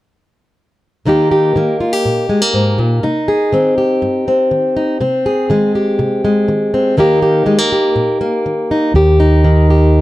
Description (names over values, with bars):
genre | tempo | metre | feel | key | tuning
folk | 122 BPM | 4/4 | straight | Eb major | A4 = 439 Hz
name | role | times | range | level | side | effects
fingerpicked plugged-in steel-string acoustic guitar | accompaniment | 1.1-10.0 s | Eb2 to Ab4 | -12 LUFS | equal | none
fingered electric bass | bass | 8.9-10.0 s | Eb2 | -10 LUFS | right 1 dB | none
room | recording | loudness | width
moderate studio reverb, RT60 0.7 s | dark, warm production | -11 LUFS | side -16 dB against mid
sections
1.1-8.9 A section; 8.9-10.0 B section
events
none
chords
1.1 Eb; 3.0 Cm; 5.0 Ab/C; 7.0 Eb